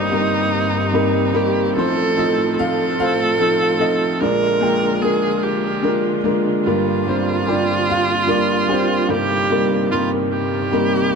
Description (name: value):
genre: acoustic folk-pop ballad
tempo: 49 BPM (dotted quarters)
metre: 6/8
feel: straight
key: C minor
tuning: A4 = 442 Hz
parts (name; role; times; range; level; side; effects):
- clear upright piano; melody; 0.0-11.2 s; G1 to G5; -18 LUFS; equal; tape echo
- clear viola; second line; 0.0-11.2 s; Eb4 to Bb4; -21 LUFS; right 3 dB; tape echo
- warm chamber string section; sustained chords; 0.0-11.2 s; G2 to G4; -27 LUFS; left 1 dB; none
room: light reverb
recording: close, detailed microphones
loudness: -16 LUFS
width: side -5 dB against mid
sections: 0.0-11.2 A section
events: none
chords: 0.0 Cm7/G; 1.8 F7/A; 4.2 Bb7; 6.7 Gm7; 9.1 Cm7/G